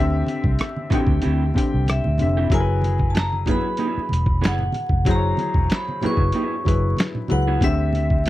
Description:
R&B, neo-soul; 94 BPM; 4/4; swing 54% on 16ths; A4 = 440 Hz
dark baby grand piano; accompaniment; 0.0-8.3 s; D3 to G5; -25 LUFS; left 4 dB
vintage muted fingered electric bass; bass; 0.0-8.3 s; E1 to D2; -21 LUFS; equal
boom bap sampler-style drum kit; drums; 0.3-8.3 s; finger snaps, hi-hat, kick drum, rim click, snare drum; -22 LUFS; equal
congas; percussion; 0.3-8.1 s; -31 LUFS; right 2 dB
electric guitar through a small old amp; second line; 0.6-8.3 s; B3 to G#4; -28 LUFS; right 4 dB; spring reverb
vibraphone with hard mallets; melody; 1.9-8.3 s; E5 to C#6; -26 LUFS; equal; slapback echo
little or no reverb; dry, close 1970s-style studio recording, vinyl crackle; -18 LUFS; side -15 dB against mid
0.0-8.3 A section
0.0 D9sus4; 2.5 F#9sus4; 7.6 D9sus4
0.59 1.23 1.86 | 2.50 3.14 3.78 4.42 | 5.06 5.69 6.33 6.97 | 7.61 8.25

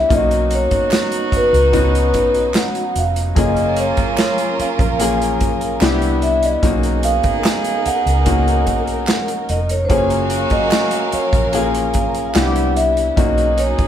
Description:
lush 1970s-style soul; 74 BPM; 4/4; straight; A4 = 436 Hz
vibraphone with soft mallets; melody; 0.0-13.9 s; B4 to F#5; -19 LUFS; equal
warm concert grand piano; accompaniment; 0.0-13.9 s; A#3 to G#4; -21 LUFS; left 5 dB
dark studio string section; sustained chords; 0.0-13.9 s; C3 to E#5; -27 LUFS; right 1 dB
warm horn section; stabs; 0.1-13.9 s; A#3 to G#4; -24 LUFS; right 3 dB
vintage muted fingered electric bass; bass; 0.1-13.8 s; E#1 to C#2; -20 LUFS; equal
vintage drum kit; drums; 0.1-13.9 s; hi-hat, kick drum, snare drum; -20 LUFS; right 1 dB
group handclap; percussion; 0.9-12.5 s; -29 LUFS; right 2 dB
light reverb; band playing live in one room; -14 LUFS; side -10 dB against mid
0.0-13.9 A section
0.1 Bmaj7; 3.4 F#maj7; 5.8 Cmaj7; 6.6 Bmaj7; 9.9 F#maj7; 12.3 Cmaj7; 13.2 Bmaj7
| 0.10 0.92 1.73 2.55 | 3.36 4.18 4.99 5.81 | 6.63 7.44 8.26 9.08 | 9.90 10.71 11.53 12.35 | 13.17

